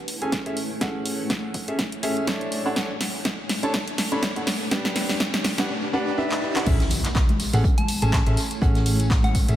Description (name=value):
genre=piano house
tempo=123 BPM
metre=4/4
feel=swing 56% on 16ths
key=A major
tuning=A4 = 437 Hz
part: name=riser and impact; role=sound effects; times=1.5-8.6 s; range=none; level=-32 LUFS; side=equal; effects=none
part: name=granular cloud pad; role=texture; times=0.0-9.6 s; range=A3 to A5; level=-34 LUFS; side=equal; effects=built-in reverb, sidechain pumping
part: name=punchy analog drum machine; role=drums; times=0.1-9.6 s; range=crash cymbal, handclaps, hi-hat, snare drum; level=-27 LUFS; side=equal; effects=none
part: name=clear upright piano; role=riff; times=0.2-9.6 s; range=C#4 to B5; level=-28 LUFS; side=equal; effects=vintage 12-bit sampler grit, sidechain pumping, low-pass filter, analog delay
part: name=electronic kick drum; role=drums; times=0.3-9.5 s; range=none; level=-23 LUFS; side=equal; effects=high-pass filter on kick
part: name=hollow-body short-scale fingered electric bass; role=bass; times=6.7-9.6 s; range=A1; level=-22 LUFS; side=equal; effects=tube saturation, sidechain pumping
part: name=warm soul drum kit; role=drums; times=6.7-9.5 s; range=hi-hat, snare drum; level=-38 LUFS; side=right 2 dB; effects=sidechain pumping on hats, high-pass filter on hats, high-pass filter on snare, high-pass filter on room
part: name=tambourine and congas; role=percussion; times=6.7-9.6 s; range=none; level=-32 LUFS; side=left 2 dB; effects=none
part: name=soft synth bell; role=melody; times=7.8-9.6 s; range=F#5 to A5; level=-33 LUFS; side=right 1 dB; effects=chorus, phaser, analog delay
room=light reverb, studio reverb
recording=none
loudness=-21 LUFS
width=side -12 dB against mid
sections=0.0-6.7 A section; 6.7-9.6 B section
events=build-up 0.0-6.7; drum fill 0.0-5.7, 6.3-6.7; riser 1.5-6.7; drop 6.7-9.6; impact 6.7-8.6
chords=0.0 Amaj7; 4.5 Gmaj7; 6.7 Amaj7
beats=0.32 | 0.81 1.30 1.79 2.27 | 2.76 3.25 3.74 4.23 | 4.71 5.20 5.69 6.18 | 6.67 7.15 7.64 8.13 | 8.62 9.10